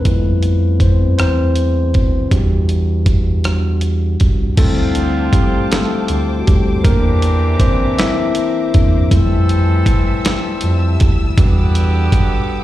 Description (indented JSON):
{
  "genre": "slow six-eight R&B",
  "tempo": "53 BPM (dotted quarters)",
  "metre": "6/8",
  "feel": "straight",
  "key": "unclear",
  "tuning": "A4 = 440 Hz",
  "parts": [
    { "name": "mellow tine electric piano", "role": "accompaniment", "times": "0.0-12.6 s", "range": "E3 to E5", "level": "-19 LUFS", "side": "left 3 dB", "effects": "plate reverb, slapback echo" },
    { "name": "round analog bass", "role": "bass", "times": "0.0-12.2 s", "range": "C2 to F2", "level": "-15 LUFS", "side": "right 1 dB", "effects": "none" },
    { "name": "dusty soul sampler-style drum kit", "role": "drums", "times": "0.1-12.3 s", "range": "crash cymbal, hi-hat, kick drum, rim click, snare drum", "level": "-14 LUFS", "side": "right 1 dB", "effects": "none" },
    { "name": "rich studio string section", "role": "sustained chords", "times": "4.6-12.6 s", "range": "G3 to E6", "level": "-29 LUFS", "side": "left 1 dB", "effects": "none" },
    { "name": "clear horn section", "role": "stabs", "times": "4.6-12.6 s", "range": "D3 to A4", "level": "-24 LUFS", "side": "right 2 dB", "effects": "plate reverb, slapback echo" }
  ],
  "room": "little or no reverb",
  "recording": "live gig heard through the venue's PA, recital hall reverb",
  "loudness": "-12 LUFS",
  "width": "side -14 dB against mid",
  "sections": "0.0-4.6 A section; 4.6-12.6 B section",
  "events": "tine electric piano solo 0.0-4.6, 4.6-12.6",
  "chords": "0.1 Fmaj9; 2.3 Em9; 4.6 D7sus4; 6.8 C9/E; 9.1 Fmaj9; 11.4 Em9"
}